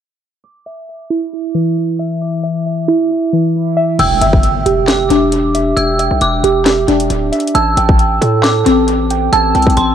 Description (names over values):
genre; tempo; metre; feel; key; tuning
hip hop, trap; 135 BPM; 4/4; half-time; E minor; A4 = 440 Hz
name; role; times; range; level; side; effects
muted felt-like synth keys; arpeggios; 0.4-9.9 s; E3 to D6; -13 LUFS; right 1 dB; chorus, low-pass filter, dub echo
dark detuned synth bell; second line; 4.0-9.9 s; C6 to E6; -19 LUFS; left 1 dB; chorus, phaser, dub echo
distorted 808-style bass; bass; 4.0-9.9 s; D1 to A2; -17 LUFS; left 1 dB; distortion
trap drum kit; drums; 4.0-9.9 s; crash cymbal, handclaps, hi-hat, kick drum, snare drum; -17 LUFS; left 1 dB; dub echo
impact; sound effects; 4.0-5.8 s; none; -24 LUFS; left 1 dB; none
room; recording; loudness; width
light reverb; echo-heavy mix, low-pass filter; -11 LUFS; side -9 dB against mid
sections
0.4-4.0 A section; 4.0-9.9 B section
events
filter sweep 0.4-4.0; impact 4.0-5.8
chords
0.4 Dsus2/E; 4.0 Em7; 7.5 Am7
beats
| 0.44 0.88 1.33 1.77 | 2.21 2.66 3.10 3.55 | 3.99 4.44 4.88 5.33 | 5.77 6.21 6.66 7.10 | 7.55 7.99 8.44 8.88 | 9.33 9.77